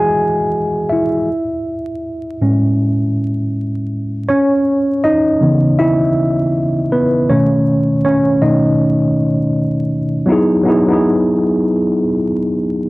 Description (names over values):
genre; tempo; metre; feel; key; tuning
hip hop; 80 BPM; 4/4; swing 64% on 16ths; E major; A4 = 440 Hz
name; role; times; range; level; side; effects
mellow tine electric piano; solo; 0.0-12.9 s; A2 to G#5; -13 LUFS; equal; medium stereo tremolo, cassette tape, low-pass filter
room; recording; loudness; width
light reverb; worn, warbling old tape, cassette tape, vinyl crackle, warbly pitch drift; -13 LUFS; side -20 dB against mid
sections
0.0-10.3 A section; 10.3-12.9 B section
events
tine electric piano solo 0.0-10.3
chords
0.0 Emaj7; 1.3 Amaj7; 4.3 C#m9; 7.3 B9; 10.3 Emaj9